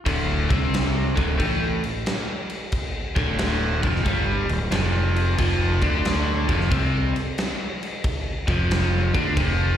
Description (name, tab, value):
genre	blues rock power trio and southern rock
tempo	90 BPM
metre	4/4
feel	swing 66% on 8ths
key	D minor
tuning	A4 = 444 Hz
part	overdriven electric guitar	riff	0.1-9.8 s	D2 to D4	-24 LUFS	equal	slapback echo
part	fuzz fingered electric bass	bass	0.1-9.8 s	D1 to D2	-24 LUFS	equal	overdrive
part	big rock drum kit	drums	0.1-9.6 s	crash cymbal, kick drum, snare drum	-25 LUFS	equal	none
room	small room ambience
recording	live gig heard through the venue's PA, recital hall reverb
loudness	-20 LUFS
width	side -10 dB against mid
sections	0.1-9.8 A section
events	none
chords	0.1 Dm; 5.4 F5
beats	| 0.07 0.73 1.40 2.06 | 2.73 3.39 4.06 4.72 | 5.38 6.05 6.71 7.38 | 8.04 8.70 9.37